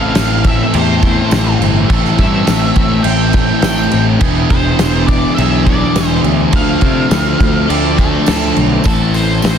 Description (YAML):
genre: rock, shoegaze and dream pop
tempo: 104 BPM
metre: 4/4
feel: straight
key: A minor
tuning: A4 = 440 Hz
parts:
  - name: octave-fuzz lead guitar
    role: melody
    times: 0.0-9.6 s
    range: A4 to G5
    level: -21 LUFS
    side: equal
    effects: distortion, tape echo
  - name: direct-recorded clean electric guitar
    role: arpeggios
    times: 0.0-9.6 s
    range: E3 to A4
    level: -25 LUFS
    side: left 8 dB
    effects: ensemble chorus, tape echo
  - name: biting overdriven guitar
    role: riff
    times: 0.0-9.6 s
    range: A2 to A4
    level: -18 LUFS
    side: right 14 dB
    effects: reverse reverb
  - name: thick fuzz guitar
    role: riff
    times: 0.0-9.6 s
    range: E2 to D4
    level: -16 LUFS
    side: left 9 dB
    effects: distortion, lush chorus
  - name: fuzz picked electric bass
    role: bass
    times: 0.0-9.6 s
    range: E1 to C3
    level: -17 LUFS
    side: equal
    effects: overdrive
  - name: loose indie drum kit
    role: drums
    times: 0.2-9.6 s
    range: crash cymbal, hi-hat, kick drum, snare drum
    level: -16 LUFS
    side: equal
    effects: none
  - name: tambourine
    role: percussion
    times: 0.2-9.6 s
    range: none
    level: -31 LUFS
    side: right 17 dB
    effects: none
room: small room ambience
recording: dense, heavily limited modern master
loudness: -10 LUFS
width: side -8 dB against mid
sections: 0.0-8.8 A section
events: none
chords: 0.0 Am7; 4.2 E7; 6.5 Dm7; 8.8 Am